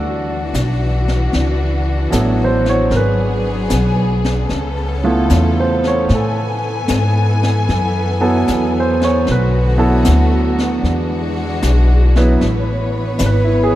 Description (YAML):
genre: jazz ballad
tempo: 76 BPM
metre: 4/4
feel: swing 68% on 8ths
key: unclear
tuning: A4 = 440 Hz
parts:
  - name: warm grand piano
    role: accompaniment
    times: 0.0-13.8 s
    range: F#3 to D5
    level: -19 LUFS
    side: right 2 dB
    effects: none
  - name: warm studio string section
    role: sustained chords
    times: 0.0-13.8 s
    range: C#3 to G#5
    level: -21 LUFS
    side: left 1 dB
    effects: none
  - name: upright bass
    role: bass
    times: 0.0-13.8 s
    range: G#1 to A2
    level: -16 LUFS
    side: equal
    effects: none
  - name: jazz brush drum kit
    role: drums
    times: 0.5-13.8 s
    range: brushed snare drum, hi-hat, snare drum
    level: -25 LUFS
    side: left 2 dB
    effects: none
room: moderate cathedral reverb, RT60 5.0 s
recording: in a vast, echoing space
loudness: -13 LUFS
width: side -14 dB against mid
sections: 0.0-13.8 A section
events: none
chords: 0.0 Dmaj9; 2.9 G#m7b5; 4.5 C#7alt; 6.1 F#m11; 9.3 Bm7; 10.8 E9; 12.4 Amaj9